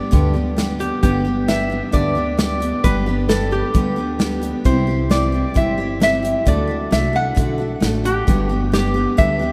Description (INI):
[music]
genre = honky-tonk and classic country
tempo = 132 BPM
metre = 4/4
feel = straight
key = G major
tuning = A4 = 440 Hz
[part]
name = lap resonator guitar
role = melody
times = 0.0-9.5 s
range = G4 to F#5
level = -24 LUFS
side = equal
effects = none
[part]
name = picked steel-string acoustic guitar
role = accompaniment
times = 0.0-9.5 s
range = G2 to A4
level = -23 LUFS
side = equal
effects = none
[part]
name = upright bass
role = bass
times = 0.1-9.5 s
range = G1 to D2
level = -26 LUFS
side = equal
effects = none
[part]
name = natural country drum kit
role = drums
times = 0.1-9.3 s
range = hi-hat, kick drum, snare drum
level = -24 LUFS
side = equal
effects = none
[sound]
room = wet cathedral reverb, RT60 5.2 s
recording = in a vast, echoing space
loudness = -18 LUFS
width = mono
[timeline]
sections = 0.0-8.3 A section; 8.3-9.5 A section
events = none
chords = 0.0 G; 4.7 C; 6.5 D; 8.3 G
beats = 0.12 0.58 | 1.03 1.48 1.94 2.39 | 2.84 3.29 3.75 4.20 | 4.65 5.11 5.56 6.01 | 6.46 6.92 7.37 7.82 | 8.28 8.73 9.18